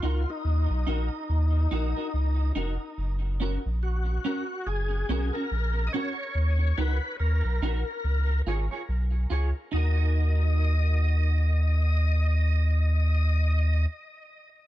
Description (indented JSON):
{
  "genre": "roots reggae",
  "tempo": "71 BPM",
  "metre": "4/4",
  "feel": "swing 59% on 16ths",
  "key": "Eb minor",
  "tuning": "A4 = 440 Hz",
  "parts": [
    { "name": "overdriven tonewheel organ", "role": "melody", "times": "0.0-13.9 s", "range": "Eb4 to Eb5", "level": "-34 LUFS", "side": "left 2 dB", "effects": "chorus vibrato, slow rotary speaker, tape echo" },
    { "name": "clean electric guitar", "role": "accompaniment", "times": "0.0-13.9 s", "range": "Db4 to Db5", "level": "-35 LUFS", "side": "right 2 dB", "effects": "ensemble chorus, tape echo" },
    { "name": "warm sub bass", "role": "bass", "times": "0.0-13.9 s", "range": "F1 to Eb2", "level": "-24 LUFS", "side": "equal", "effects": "none" }
  ],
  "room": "little or no reverb",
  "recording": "none",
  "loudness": "-24 LUFS",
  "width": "side -15 dB against mid",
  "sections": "0.0-9.7 A section; 9.7-13.1 B section",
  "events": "none",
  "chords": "0.0 Ebm; 3.0 Gb; 6.3 Ebm; 8.0 Db; 9.7 Ebm"
}